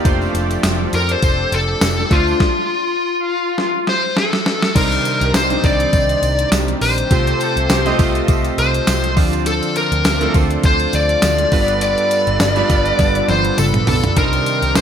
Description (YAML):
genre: 1980s-style pop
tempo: 102 BPM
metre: 4/4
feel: swing 55% on 16ths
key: unclear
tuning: A4 = 439 Hz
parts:
  - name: warm studio violin section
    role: second line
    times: 0.0-0.8, 7.4-8.4 s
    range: F4 to A4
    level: -29 LUFS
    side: right 1 dB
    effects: none
  - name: chorused retro synth keys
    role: accompaniment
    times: 0.0-14.8 s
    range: G2 to Eb5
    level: -21 LUFS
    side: right 2 dB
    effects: none
  - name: warm analog pad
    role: sustained chords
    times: 0.0-14.8 s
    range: C3 to D5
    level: -27 LUFS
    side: left 1 dB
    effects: chorus
  - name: vintage muted picked electric bass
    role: bass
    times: 0.1-14.8 s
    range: F1 to F2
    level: -21 LUFS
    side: equal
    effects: none
  - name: clean 12-bit digital drum machine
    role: drums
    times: 0.1-14.8 s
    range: crash cymbal, hi-hat, kick drum, snare drum, tambourine, toms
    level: -18 LUFS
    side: equal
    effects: overdrive, gated reverb
  - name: tambourine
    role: percussion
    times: 0.1-14.8 s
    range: none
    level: -35 LUFS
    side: right 5 dB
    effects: none
  - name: smooth overdriven lead guitar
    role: melody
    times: 1.0-14.8 s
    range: F4 to D5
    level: -18 LUFS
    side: left 2 dB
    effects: digital delay
room: moderate plate reverb, RT60 1.6 s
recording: bright 1980s-style digital production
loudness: -14 LUFS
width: side -8 dB against mid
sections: 0.0-4.8 A section; 4.8-14.8 B section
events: drum fill 3.6-4.8, 13.0-14.2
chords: 0.0 F6; 2.1 Dm7; 4.8 Cmadd9; 7.1 Fadd9/C; 9.2 Dm7; 11.5 G7; 14.2 Cmadd9